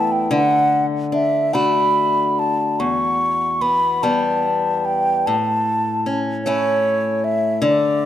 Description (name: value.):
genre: celtic folk, Celtic slow air.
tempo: 49 BPM (dotted quarters).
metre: 6/8.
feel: rubato.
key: unclear.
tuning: A4 = 440 Hz.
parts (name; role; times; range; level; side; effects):
baroque flute; melody; 0.0-8.1 s; C#5 to C#6; -18 LUFS; right 1 dB; none.
picked acoustic archtop guitar; accompaniment; 0.0-8.1 s; E2 to F#4; -21 LUFS; left 3 dB; none.
room: moderate concert hall reverb, RT60 2.0 s.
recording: minimal, uncompressed stereo recording.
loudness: -16 LUFS.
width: side -11 dB against mid.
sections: 0.0-8.1 A section.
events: none.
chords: 0.3 D; 2.8 Em; 5.3 A.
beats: | 0.31 1.53 | 2.78 4.02 | 5.25 6.44 | 7.62.